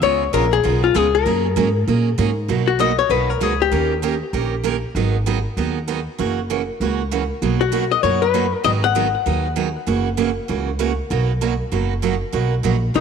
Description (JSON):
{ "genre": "country, western swing", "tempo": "195 BPM", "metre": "4/4", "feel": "swing 63% on 8ths", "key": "B major", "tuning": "A4 = 440 Hz", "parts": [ { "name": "archtop guitar, miked and amplified", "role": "melody", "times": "0.0-4.2, 7.6-9.4, 13.0 s", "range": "D#4 to F#5", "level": "-19 LUFS", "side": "left 10 dB", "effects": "tape echo" }, { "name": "picked steel-string acoustic guitar", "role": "accompaniment", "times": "0.0-13.0 s", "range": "B2 to A#4", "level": "-22 LUFS", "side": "right 11 dB", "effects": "none" }, { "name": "upright bass", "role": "bass", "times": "0.0-13.0 s", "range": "F#1 to A#2", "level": "-22 LUFS", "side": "equal", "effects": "none" } ], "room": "moderate plate reverb, RT60 2.9 s", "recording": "1960s-style stereo with parts hard left and right", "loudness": "-17 LUFS", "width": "side -6 dB against mid", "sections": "0.0-2.5 A section; 2.5-12.3 B section", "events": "none", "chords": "0.0 C#7; 1.3 F#add9; 2.5 Bmaj9; 3.7 D#7; 4.9 G#m7; 6.2 F#7; 7.4 Bmaj7; 8.6 G#m7; 9.9 F#7; 11.1 Bmaj7" }